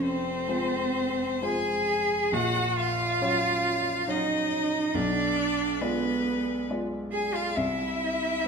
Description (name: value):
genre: classical, slow romantic movement for piano trio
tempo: 68 BPM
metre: 3/4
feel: rubato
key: unclear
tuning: A4 = 440 Hz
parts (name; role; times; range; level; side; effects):
- clear violin; melody; 0.0-8.5 s; B4 to G#5; -31 LUFS; left 10 dB; none
- rich cello; second line; 0.0-8.5 s; B3 to G#4; -27 LUFS; right 4 dB; none
- warm grand piano; accompaniment; 0.0-8.5 s; F1 to D5; -31 LUFS; left 2 dB; none
room: wet recital hall reverb, RT60 1.5 s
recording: none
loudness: -25 LUFS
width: side -5 dB against mid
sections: 0.0-8.5 A section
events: none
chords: 0.0 Fm; 2.3 Gb/Bb; 4.9 Bdim7; 7.6 C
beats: 0.48 1.43 | 2.33 3.21 4.08 | 4.94 5.81 6.69 | 7.56 8.44